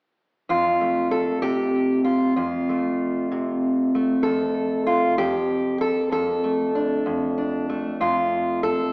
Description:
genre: folk, solo fingerstyle acoustic guitar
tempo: 64 BPM (dotted quarters)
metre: 6/8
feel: straight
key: F major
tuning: A4 = 438 Hz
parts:
  - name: fingerpicked steel-string acoustic guitar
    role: solo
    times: 0.5-8.9 s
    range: F2 to A4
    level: -23 LUFS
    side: equal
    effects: analog delay
room: wet recital hall reverb, RT60 1.5 s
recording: heard from further back in the room, AM radio sound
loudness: -23 LUFS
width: mono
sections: 0.5-8.9 A section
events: none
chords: 0.5 F; 4.2 Dm/F; 8.0 F

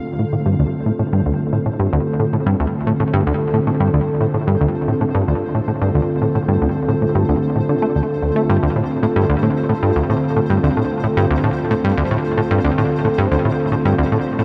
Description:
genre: ambient, sequencer-driven space music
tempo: 112 BPM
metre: 4/4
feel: straight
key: D minor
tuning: A4 = 441 Hz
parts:
  - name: sweeping resonant pad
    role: sustained chords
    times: 0.0-14.4 s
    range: D3 to A4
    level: -22 LUFS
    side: equal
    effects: chorus
  - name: analog drone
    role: bass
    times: 5.1-14.4 s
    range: D2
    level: -41 LUFS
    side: equal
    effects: none
  - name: pulsing gated texture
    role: texture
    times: 0.0-14.4 s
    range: C5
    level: -37 LUFS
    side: equal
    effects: chorus, built-in reverb
  - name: plucky analog bass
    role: riff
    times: 0.2-14.4 s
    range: D2 to A3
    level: -20 LUFS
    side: equal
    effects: delay
room: moderate huge ambient reverb, RT60 7.5 s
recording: none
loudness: -18 LUFS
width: mono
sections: 0.0-14.4 A section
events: fade-in on synth texture 0.0-14.4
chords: 0.0 Dm7

